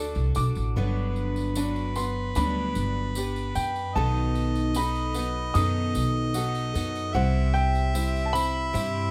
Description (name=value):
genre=acoustic folk duo or small band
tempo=75 BPM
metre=4/4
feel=straight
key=G major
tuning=A4 = 440 Hz
part: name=warm harmonica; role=second line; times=0.0-9.1 s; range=B4 to E5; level=-36 LUFS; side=equal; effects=none
part: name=picked twelve-string acoustic guitar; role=accompaniment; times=0.0-9.1 s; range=G2 to B4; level=-34 LUFS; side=equal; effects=none
part: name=bright upright piano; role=arpeggios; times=0.0-9.1 s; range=B3 to A4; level=-39 LUFS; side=equal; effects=none
part: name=upright bass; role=bass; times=0.0-9.1 s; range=G1 to G2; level=-29 LUFS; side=equal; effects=none
part: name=tambourine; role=percussion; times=0.1-8.9 s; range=none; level=-43 LUFS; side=equal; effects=none
part: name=warm upright piano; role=melody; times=0.4-9.1 s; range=F#5 to D#6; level=-34 LUFS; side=equal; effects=slapback echo
room=little or no reverb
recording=close, detailed microphones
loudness=-26 LUFS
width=mono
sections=0.0-9.1 A section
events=none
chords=0.0 D; 0.8 Gmaj7; 4.0 B7; 7.1 C